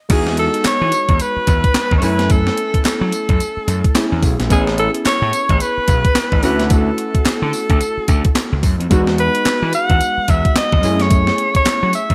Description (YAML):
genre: R&B, new jack swing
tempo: 109 BPM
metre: 4/4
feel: swing 60% on 16ths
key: E major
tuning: A4 = 437 Hz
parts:
  - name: bright alto saxophone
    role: melody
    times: 0.1-12.1 s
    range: G#4 to F#5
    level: -21 LUFS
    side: equal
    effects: none
  - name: warm analog keys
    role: accompaniment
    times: 0.1-12.1 s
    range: G#3 to G#5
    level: -25 LUFS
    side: equal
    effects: chorus
  - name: gritty slap bass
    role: bass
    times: 0.1-12.1 s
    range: A1 to F#3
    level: -21 LUFS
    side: equal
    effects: overdrive
  - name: clean 12-bit digital drum machine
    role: drums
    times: 0.1-12.1 s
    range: crash cymbal, handclaps, hi-hat, kick drum, snare drum, tambourine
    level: -19 LUFS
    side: equal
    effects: overdrive, gated reverb
  - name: group handclap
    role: percussion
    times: 0.6-11.8 s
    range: none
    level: barely audible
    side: none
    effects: none
room: light reverb, digital ambience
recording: bright 1980s-style digital production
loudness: -16 LUFS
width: mono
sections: 0.1-12.1 A section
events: none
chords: 0.1 Emaj7; 2.0 F#m7; 4.5 Amaj7; 6.4 Dmaj7; 8.9 Emaj7; 10.8 F#m7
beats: | 0.10 0.65 1.20 1.75 | 2.30 2.85 3.40 3.95 | 4.50 5.05 5.60 6.15 | 6.71 7.25 7.81 8.36 | 8.91 9.46 10.01 10.56 | 11.11 11.66